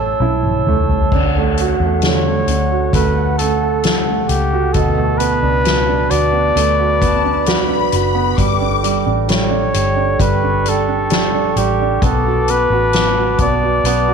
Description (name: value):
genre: pop ballad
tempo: 66 BPM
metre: 4/4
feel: straight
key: D major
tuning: A4 = 438 Hz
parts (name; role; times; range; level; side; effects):
- warm baby grand piano; accompaniment; 0.0-14.1 s; B2 to F#5; -19 LUFS; right 12 dB; none
- glass harmonica; sustained chords; 0.0-14.1 s; A4 to E6; -22 LUFS; left 1 dB; none
- vintage muted fingered electric bass; bass; 0.0-14.1 s; F#1 to E2; -20 LUFS; left 2 dB; none
- soft-mallet drum kit; drums; 0.2-14.1 s; crash cymbal, hi-hat, kick drum, snare drum, toms; -20 LUFS; left 2 dB; none
- warm flugelhorn; melody; 2.1-14.1 s; G4 to D5; -18 LUFS; left 2 dB; none
- clear studio violin section; second line; 7.0-9.1 s; A5 to D6; -22 LUFS; left 10 dB; none
room: light reverb, studio reverb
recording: 1960s-style stereo with parts hard left and right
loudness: -13 LUFS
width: side -6 dB against mid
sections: 0.0-1.1 A section; 1.1-14.1 B section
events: drum fill 0.2-1.1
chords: 0.0 A; 1.1 Dmaj7; 4.8 Bm7; 8.4 Gsus2; 12.0 Bm7